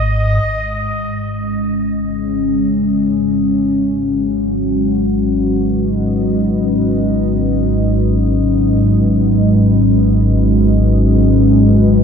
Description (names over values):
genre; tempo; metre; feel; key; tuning
dark ambient drone; free time; none; none; G# minor; A4 = 439 Hz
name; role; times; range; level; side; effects
deep rumbling drone; drone; 0.0-12.0 s; G#1 to G#2; -17 LUFS; equal; built-in reverb, phaser
bubbling stepped-filter texture; texture; 0.0-0.5 s; D#5; -23 LUFS; right 1 dB; chorus, built-in reverb
deep dark ambient pad; sustained chords; 0.8-12.0 s; G#3 to D#5; -14 LUFS; left 1 dB; chorus, built-in reverb
room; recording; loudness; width
wet cathedral reverb, RT60 5.7 s; none; -12 LUFS; side -6 dB against mid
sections
0.5-12.0 A section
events
fade-in on synth drone 0.5-12.0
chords
0.5 G#m